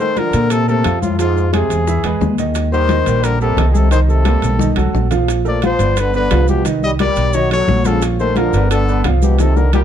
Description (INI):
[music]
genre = Afro-Cuban jazz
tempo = 176 BPM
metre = 4/4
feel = straight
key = Bb major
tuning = A4 = 440 Hz
[part]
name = clear trumpet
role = melody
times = 0.0-9.8 s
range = F4 to Eb5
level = -20 LUFS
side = left 3 dB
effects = analog delay
[part]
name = trombone with plunger mute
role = second line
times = 0.0-9.8 s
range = Ab2 to G3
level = -23 LUFS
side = left 5 dB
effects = none
[part]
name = clear baby grand piano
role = accompaniment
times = 0.0-9.8 s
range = Eb3 to F5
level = -20 LUFS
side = right 5 dB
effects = none
[part]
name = bongos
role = percussion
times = 0.0-9.8 s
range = none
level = -26 LUFS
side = left 6 dB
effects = none
[part]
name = congas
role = percussion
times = 0.0-9.8 s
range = none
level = -24 LUFS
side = left 5 dB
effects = none
[part]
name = maracas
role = percussion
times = 0.0-9.8 s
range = none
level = -35 LUFS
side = right 8 dB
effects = none
[part]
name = timbales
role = percussion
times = 0.2-9.8 s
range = none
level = -27 LUFS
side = right 7 dB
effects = none
[part]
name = upright bass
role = bass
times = 0.3-9.8 s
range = G1 to Bb2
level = -16 LUFS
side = equal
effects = none
[sound]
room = light reverb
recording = dark, warm production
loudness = -13 LUFS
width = side -9 dB against mid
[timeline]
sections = 0.0-9.8 A section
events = drum fill 4.4-5.3, 9.4-9.8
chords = 0.0 Bbmaj9; 1.2 Fm; 1.9 E; 2.6 Eb; 3.9 Cm7; 4.6 B7; 5.3 Bbmaj9; 6.0 G7; 6.7 Cm9; 7.3 B9; 8.0 Bbmaj7; 8.7 G7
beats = 0.16 0.50 0.84 | 1.19 1.53 1.87 2.21 | 2.55 2.89 3.24 3.58 | 3.92 4.26 4.60 4.95 | 5.29 5.63 5.97 6.31 | 6.65 7.00 7.34 7.68 | 8.02 8.37 8.71 9.05 | 9.39 9.73